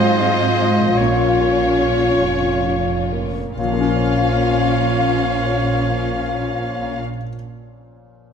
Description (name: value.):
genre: cinematic, emotional film score for orchestra.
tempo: 43-54 BPM (dotted quarters).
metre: 6/8.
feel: rubato.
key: Bb minor.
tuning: A4 = 444 Hz.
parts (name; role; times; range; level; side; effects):
warm symphonic violin section; melody; 0.0-7.0 s; Db5 to F5; -25 LUFS; left 5 dB; none.
hollow concert flute; second line; 0.0-7.0 s; F5; -25 LUFS; left 4 dB; none.
mellow clarinet; second line; 0.0-7.0 s; F4; -29 LUFS; left 2 dB; none.
warm oboe; second line; 0.0-7.0 s; C5 to Db5; -27 LUFS; right 2 dB; none.
warm symphonic violin section; second line; 0.0-7.0 s; F4; -28 LUFS; left 2 dB; none.
felt-muted upright piano; accompaniment; 0.0-8.3 s; Ab2 to Db5; -26 LUFS; left 1 dB; none.
warm symphonic viola section; accompaniment; 0.0-7.0 s; C4 to Db4; -26 LUFS; left 1 dB; none.
mellow French horn section; sustained chords; 0.0-7.0 s; F3 to F4; -24 LUFS; left 2 dB; none.
concert harp; arpeggios; 0.0-7.5 s; Ab2 to Db5; -29 LUFS; left 10 dB; none.
rich symphonic double bass section; bass; 0.0-7.0 s; F1 to Ab2; -25 LUFS; right 5 dB; none.
warm symphonic cello section; bass; 0.0-7.0 s; F2 to Ab3; -26 LUFS; right 2 dB; none.
room: moderate scoring stage reverb, RT60 1.9 s.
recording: none.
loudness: -16 LUFS.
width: side -7 dB against mid.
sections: 0.0-3.6 A section; 3.6-8.3 B section.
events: slowing down 0.0-3.6.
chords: 0.0 Fm/Ab; 1.0 Bbm.